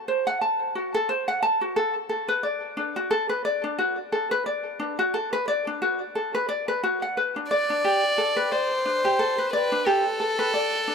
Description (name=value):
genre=folktronica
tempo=89 BPM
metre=4/4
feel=swing 56% on 16ths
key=unclear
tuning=A4 = 440 Hz
part: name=ukulele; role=arpeggios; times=0.1-10.9 s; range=D4 to A5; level=-24 LUFS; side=left 1 dB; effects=ping-pong delay
part: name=warm violin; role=melody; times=7.5-10.9 s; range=A4 to D5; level=-23 LUFS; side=equal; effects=none
room=moderate plate reverb, RT60 3.5 s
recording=none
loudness=-22 LUFS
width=side -6 dB against mid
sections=0.0-10.9 A section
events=none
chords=0.0 F#dim; 2.1 D6; 7.5 Gsus2/D